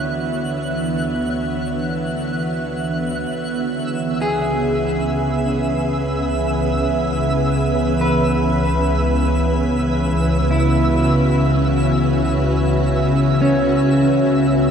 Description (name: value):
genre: ambient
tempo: free time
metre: none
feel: none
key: unclear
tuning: A4 = 439 Hz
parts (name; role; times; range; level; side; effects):
- soft additive organ-like pad; sustained chords; 0.0-14.7 s; C#3 to E5; -20 LUFS; equal; ensemble chorus, built-in reverb
- warm symphonic double bass section; bass; 0.0-14.7 s; C#2 to D2; -24 LUFS; equal; none
- organ-like drone; drone; 0.0-14.7 s; E3 to B3; -23 LUFS; equal; ensemble chorus, built-in reverb
- twinkling granular texture; texture; 0.0-14.7 s; E6 to F#6; -30 LUFS; right 1 dB; built-in reverb
- electric guitar at the edge of break-up; arpeggios; 4.2-14.4 s; C#4 to B4; -23 LUFS; equal; spring reverb, diffuse ambient delay
room: wet cathedral reverb, RT60 6.6 s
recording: dark, warm production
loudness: -16 LUFS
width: side -7 dB against mid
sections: 0.0-14.7 A section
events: fade-in on ambient pad 0.0-14.7; fade-in on double bass section 0.0-14.7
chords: 0.0 Dmaj7; 3.4 C#m7